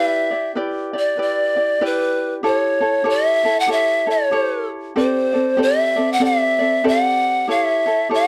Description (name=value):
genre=Hawaiian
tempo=95 BPM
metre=4/4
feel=swing 61% on 8ths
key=unclear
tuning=A4 = 440 Hz
part: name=breathy bright pan flute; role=melody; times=0.0-8.3 s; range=B4 to F#5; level=-20 LUFS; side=equal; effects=none
part: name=ukulele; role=accompaniment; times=0.0-8.3 s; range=C4 to D5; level=-24 LUFS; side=equal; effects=none
room=moderate small room reverb, RT60 0.5 s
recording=dark, warm production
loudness=-18 LUFS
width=mono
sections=0.0-8.3 A section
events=none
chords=0.0 Em7; 2.4 A7; 5.0 D7sus4; 7.5 A7